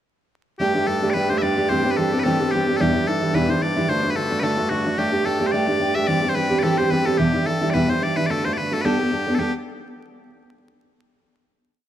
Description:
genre	celtic folk, Celtic reel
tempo	219 BPM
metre	4/4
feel	swing 55% on 8ths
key	G major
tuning	A4 = 440 Hz
part	loud bright bagpipes	melody	0.6-9.5 s	F#4 to E5	-24 LUFS	left 2 dB	none
part	fingerpicked steel-string acoustic guitar	accompaniment	0.6-9.5 s	E2 to A4	-20 LUFS	right 1 dB	none
part	accordion	drone	0.6-9.4 s	G2	-30 LUFS	left 1 dB	none
room	moderate plate reverb, RT60 2.6 s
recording	heard from further back in the room, vinyl crackle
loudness	-18 LUFS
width	side -11 dB against mid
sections	0.6-9.4 A section; 9.4-10.5 final chord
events	none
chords	0.6 Gsus2; 1.7 Am7; 2.8 Em7; 3.9 D; 5.0 Gsus2; 6.1 Am7; 7.2 Em7; 8.3 D; 8.8 Gadd9

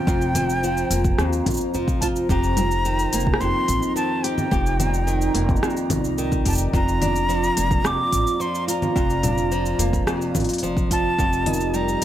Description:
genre	folktronica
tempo	108 BPM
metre	4/4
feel	straight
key	unclear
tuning	A4 = 440 Hz
part	jazz flute	melody	0.0-12.0 s	G5 to D6	-25 LUFS	right 1 dB	digital delay
part	warbly tape-like pad	sustained chords	0.0-12.0 s	Eb4 to Bb5	-29 LUFS	equal	chorus, built-in reverb, tremolo, vintage 12-bit sampler grit
part	flamenco guitar	arpeggios	0.0-12.0 s	F2 to G4	-25 LUFS	right 1 dB	none
part	upright bass	bass	0.1-12.0 s	F1 to Eb2	-25 LUFS	equal	none
part	electronic kick drum	drums	0.1-11.3 s	none	-24 LUFS	equal	none
part	organic electronic drum kit	drums	0.1-12.0 s	congas, hi-hat, rim click, shaker	-26 LUFS	left 1 dB	none
room	light reverb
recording	none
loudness	-19 LUFS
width	side -11 dB against mid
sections	0.0-12.0 A section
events	none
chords	0.0 Fsus4; 2.3 Cm7/F; 6.7 Bb/F; 11.2 Eb/F

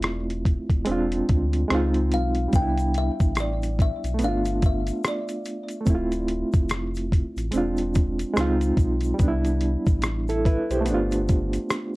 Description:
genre	lo-fi hip hop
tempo	72 BPM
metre	4/4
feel	swing 60% on 16ths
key	C major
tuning	A4 = 440 Hz
part	barky reed electric piano	accompaniment	0.0-12.0 s	G3 to C5	-25 LUFS	right 1 dB	overdrive, fast tremolo, plate reverb
part	sub bass with octave	bass	0.0-11.6 s	D1 to D2	-26 LUFS	equal	none
part	dusty soul sampler-style drum kit	drums	0.0-11.9 s	hi-hat, kick drum, rim click	-23 LUFS	equal	none
part	kalimba	melody	2.1-5.9 s	D5 to G5	-31 LUFS	left 2 dB	tape echo, plate reverb
part	egg shaker	percussion	2.5-11.9 s	none	-48 LUFS	left 7 dB	none
room	light reverb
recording	dark, warm production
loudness	-21 LUFS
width	side -20 dB against mid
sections	0.0-12.0 A section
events	none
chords	0.0 Dm9 (rootless); 0.9 E7b9b13; 1.7 Dbmaj7; 2.5 Cmaj7; 4.2 G9; 5.9 Dm9; 7.5 E7b9b13; 8.4 Dbmaj7; 9.2 Cmaj7; 10.9 G9

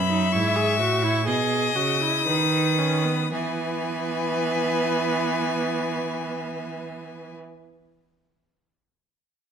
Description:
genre	classical, baroque-style fugue for string quartet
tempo	55-67 BPM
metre	4/4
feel	straight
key	E major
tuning	A4 = 441 Hz
part	clear violin	melody	0.0-7.4 s	G#5 to D#6	-28 LUFS	left 8 dB	none
part	rich violin	second line	0.0-7.4 s	B4 to E5	-29 LUFS	left 4 dB	none
part	clear cello	bass	0.0-7.4 s	F#2 to E3	-26 LUFS	right 4 dB	none
part	clear viola	accompaniment	0.1-7.4 s	B3 to G#4	-28 LUFS	right 2 dB	none
room	moderate recital hall reverb, RT60 1.4 s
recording	none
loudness	-21 LUFS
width	side -7 dB against mid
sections	0.0-3.3 A section; 3.3-7.7 B section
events	slowing down 0.0-3.3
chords	0.0 E; 1.3 B; 3.3 E

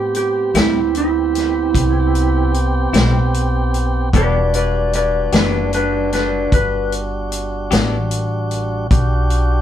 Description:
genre	slow blues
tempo	50 BPM (dotted quarters)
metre	12/8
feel	straight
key	E minor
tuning	A4 = 437 Hz
part	electric slide guitar	melody	0.0-6.9 s	D4 to D5	-18 LUFS	right 2 dB	none
part	tonewheel organ	sustained chords	0.0-9.6 s	G3 to G4	-23 LUFS	right 2 dB	overdrive
part	upright bass	bass	0.0-9.6 s	E1 to A2	-19 LUFS	equal	none
part	vintage drum kit	drums	0.1-9.5 s	hi-hat, kick drum, snare drum	-18 LUFS	left 1 dB	none
part	clean electric guitar	accompaniment	0.6-8.0 s	A2 to G4	-22 LUFS	left 4 dB	harmonic tremolo
room	light reverb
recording	band playing live in one room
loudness	-15 LUFS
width	side -10 dB against mid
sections	0.0-9.6 A section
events	none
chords	0.0 Am7; 4.1 Em7

